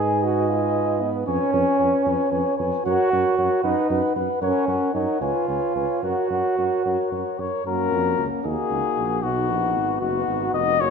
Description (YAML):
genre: classical, brass quintet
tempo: 76 BPM (dotted quarters)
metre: 6/8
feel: straight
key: F# major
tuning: A4 = 440 Hz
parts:
  - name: dark trumpet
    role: melody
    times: 0.0-10.9 s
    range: F#4 to G#5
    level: -26 LUFS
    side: left 9 dB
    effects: none
  - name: mellow flugelhorn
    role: second line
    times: 0.0-10.9 s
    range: F#4 to Eb5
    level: -29 LUFS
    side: right 6 dB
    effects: none
  - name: mellow trombone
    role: accompaniment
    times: 0.0-10.9 s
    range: A#3 to Ab4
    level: -24 LUFS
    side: right 3 dB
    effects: none
  - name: warm French horn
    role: accompaniment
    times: 0.0-10.9 s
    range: C#4 to B4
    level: -29 LUFS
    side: left 6 dB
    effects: none
  - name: mellow tuba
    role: bass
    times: 0.0-10.9 s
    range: E#1 to Ab2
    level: -28 LUFS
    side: right 5 dB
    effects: none
room: moderate scoring stage reverb, RT60 1.6 s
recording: minimal, uncompressed stereo recording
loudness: -20 LUFS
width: side -6 dB against mid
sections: 0.0-7.7 A section; 7.7-10.9 B section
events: none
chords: 0.0 Abm; 1.3 C#7/E#; 2.9 F#; 3.6 B/F#; 4.4 F#; 5.2 C#7; 6.0 F#; 8.4 D#m; 9.2 B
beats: 0.50 | 1.27 2.05 | 2.85 3.64 | 4.41 5.21 | 6.03 6.85 | 7.66 8.45 | 9.23 10.02 | 10.80